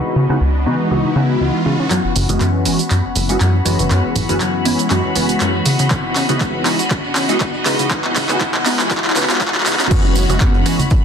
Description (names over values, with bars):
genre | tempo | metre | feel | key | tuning
filtered disco house | 120 BPM | 4/4 | swing 55% on 16ths | unclear | A4 = 440 Hz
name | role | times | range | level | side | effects
funky polysynth comp | accompaniment | 0.0-10.8 s | E3 to F#4 | -19 LUFS | equal | chorus, phaser, sidechain pumping, low-pass filter
clear studio string section | sustained chords | 0.0-11.0 s | F#4 to B5 | -26 LUFS | equal | sidechain pumping, low-pass filter
clean electric guitar | riff | 0.0-11.0 s | E3 to F#4 | -24 LUFS | left 6 dB | sidechain pumping, low-pass filter
plucky analog bass | bass | 0.0-11.0 s | F#1 to C#3 | -19 LUFS | equal | sidechain pumping, low-pass filter
riser | sound effects | 0.0-9.9 s | none | -27 LUFS | right 2 dB | none
punchy analog drum machine | drums | 1.9-11.0 s | crash cymbal, handclaps, hi-hat, shaker | -20 LUFS | right 1 dB | sidechain pumping on hats, sidechain pumping on perc, sidechain pumping on cymbals
tambourine and congas | percussion | 1.9-11.0 s | none | -28 LUFS | right 2 dB | none
electronic kick drum | drums | 5.9-11.0 s | none | -18 LUFS | equal | none
room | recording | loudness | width
moderate plate reverb, RT60 1.3 s, digital ambience | dense, heavily limited modern master, high-pass filter | -14 LUFS | side -7 dB against mid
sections
0.0-1.9 A section; 1.9-9.9 B section; 9.9-11.0 C section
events
riser 0.0-1.9, 1.9-9.9; build-up 1.9-9.9; drum fill 1.9-9.9; filter sweep 1.9-9.9; drop 9.9-11.0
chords
0.0 C#m11; 1.9 F#7sus4; 5.7 C#m11; 9.9 F#7sus4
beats
0.41 0.91 1.41 | 1.91 2.41 2.91 3.41 | 3.91 4.41 4.91 5.41 | 5.91 6.41 6.91 7.41 | 7.91 8.41 8.91 9.41 | 9.91 10.41 10.91